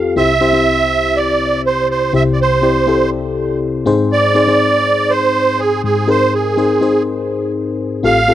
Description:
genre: pop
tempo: 122 BPM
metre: 4/4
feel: straight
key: unclear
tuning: A4 = 440 Hz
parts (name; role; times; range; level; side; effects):
- FM electric piano; accompaniment; 0.0-8.3 s; A1 to D5; -15 LUFS; left 3 dB; chorus
- musette accordion; melody; 0.2-8.3 s; Ab4 to F5; -14 LUFS; right 4 dB; none
room: light reverb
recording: dry, close 1970s-style studio recording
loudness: -12 LUFS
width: side -12 dB against mid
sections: 0.2-8.3 A section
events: none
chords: 0.2 C; 3.9 Ab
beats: | 0.17 0.66 1.16 1.65 | 2.14 2.63 3.12 3.62 | 4.11 4.60 5.09 5.58 | 6.07 6.57 7.06 7.55 | 8.04

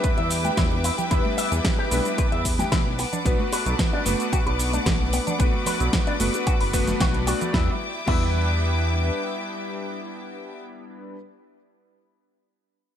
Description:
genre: nu-disco, nu disco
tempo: 112 BPM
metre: 4/4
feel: straight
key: E minor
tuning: A4 = 440 Hz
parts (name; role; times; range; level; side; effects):
- clear electric grand piano; accompaniment; 0.0-11.2 s; G3 to D5; -29 LUFS; left 2 dB; ensemble chorus, sidechain pumping, ping-pong delay
- clear symphonic string section; sustained chords; 0.0-10.6 s; E4 to D6; -30 LUFS; left 1 dB; sidechain pumping
- electric guitar with an envelope filter; riff; 0.0-8.2 s; F#3 to E5; -30 LUFS; left 2 dB; wide subtle chorus, vintage 12-bit sampler grit, ping-pong delay
- chorused synth bass; bass; 0.0-9.1 s; F#1 to E2; -25 LUFS; equal; sidechain pumping
- electronic kick drum; drums; 0.0-8.2 s; none; -24 LUFS; equal; studio reverb
- pop drum kit; drums; 0.0-8.2 s; crash cymbal, hi-hat, shaker, snare drum; -28 LUFS; right 1 dB; studio reverb, gated reverb
- bongos and congas; percussion; 0.2-7.5 s; none; -34 LUFS; right 5 dB; none
room: light reverb, digital ambience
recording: bright 1980s-style digital production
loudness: -20 LUFS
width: side -9 dB against mid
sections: 0.0-7.5 A section; 7.5-11.8 B section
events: drop 0.0-7.5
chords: 0.0 Em7; 3.0 Bm7; 7.5 Em7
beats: 0.04 0.58 | 1.11 1.65 2.18 2.72 | 3.25 3.79 4.33 4.86 | 5.40 5.93 6.47 7.00 | 7.54 8.08 8.61 9.15 | 9.68 10.22 10.76

